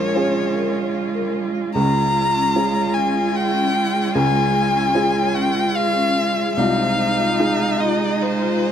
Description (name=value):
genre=neoclassical piano and strings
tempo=75 BPM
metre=3/4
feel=rubato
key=unclear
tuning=A4 = 435 Hz
part: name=warm violin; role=melody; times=0.0-8.7 s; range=C5 to Bb5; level=-21 LUFS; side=left 3 dB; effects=none
part: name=warm cello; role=second line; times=0.0-8.7 s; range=Ab3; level=-24 LUFS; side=right 4 dB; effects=none
part: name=felt-muted upright piano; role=accompaniment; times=0.0-8.7 s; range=Bb1 to Ab4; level=-24 LUFS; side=equal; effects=none
part: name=warm viola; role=accompaniment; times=0.0-8.7 s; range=Eb4 to F4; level=-26 LUFS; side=right 6 dB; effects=none
part: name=rich studio string section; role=sustained chords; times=0.0-8.7 s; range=Db4 to Ab4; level=-31 LUFS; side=equal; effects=none
part: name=vibraphone with medium mallets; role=arpeggios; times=0.0-8.6 s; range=Db4 to Ab5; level=-27 LUFS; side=left 4 dB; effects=tape echo
room=light reverb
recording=close, detailed microphones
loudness=-17 LUFS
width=side -9 dB against mid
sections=0.0-8.7 A section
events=none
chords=0.0 Bbm7; 1.8 Db; 6.6 Fm7/C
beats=0.15 0.95 | 1.75 2.55 3.35 | 4.15 4.95 5.76 | 6.57 7.39 8.22